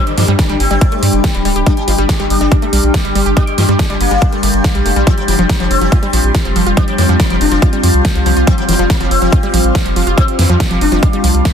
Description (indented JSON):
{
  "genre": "psychedelic trance",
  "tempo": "141 BPM",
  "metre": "4/4",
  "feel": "straight",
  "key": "unclear",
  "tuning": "A4 = 444 Hz",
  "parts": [
    { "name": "overtone-sweeping drone", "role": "sustained chords", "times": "0.1-11.5 s", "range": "G3 to G4", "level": "-19 LUFS", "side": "left 2 dB", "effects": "chorus, built-in reverb, sidechain pumping" },
    { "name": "downlifter and swell", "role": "sound effects", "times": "0.0-1.7, 11.2-11.5 s", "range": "none", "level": "-31 LUFS", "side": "left 2 dB", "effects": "none" },
    { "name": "ethereal airy pad", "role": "texture", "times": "0.0-11.5 s", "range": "C4 to D6", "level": "-20 LUFS", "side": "left 1 dB", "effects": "ensemble chorus, built-in reverb, sidechain pumping" },
    { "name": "sitar", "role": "melody", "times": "0.1-11.5 s", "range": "C3 to D4", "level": "-20 LUFS", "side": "left 4 dB", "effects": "phaser, sidechain pumping, digital delay" },
    { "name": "big-room dance drum kit", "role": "drums", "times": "0.1-11.5 s", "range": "hi-hat, snare drum", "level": "-20 LUFS", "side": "equal", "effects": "none" },
    { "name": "wide unison pluck", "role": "riff", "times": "0.2-11.5 s", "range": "E3 to G4", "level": "-20 LUFS", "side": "moving between left 4 dB and right 8 dB", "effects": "auto-pan, cassette tape, sidechain pumping, digital delay" },
    { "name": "round analog bass", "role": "bass", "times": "0.2-11.4 s", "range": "D1 to G2", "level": "-14 LUFS", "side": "equal", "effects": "none" },
    { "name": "electronic kick drum", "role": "drums", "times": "0.4-11.5 s", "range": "none", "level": "-13 LUFS", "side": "equal", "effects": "none" }
  ],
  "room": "digital ambience",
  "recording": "dense, heavily limited modern master",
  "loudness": "-10 LUFS",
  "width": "side -8 dB against mid",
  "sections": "0.0-11.5 A section",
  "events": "none",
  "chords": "0.0 G5; 5.1 F5",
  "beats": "0.39 0.81 1.24 | 1.67 2.09 2.52 2.94 | 3.37 3.79 4.22 4.64 | 5.07 5.50 5.92 6.35 | 6.77 7.20 7.62 8.05 | 8.47 8.90 9.32 9.75 | 10.18 10.60 11.03 11.45"
}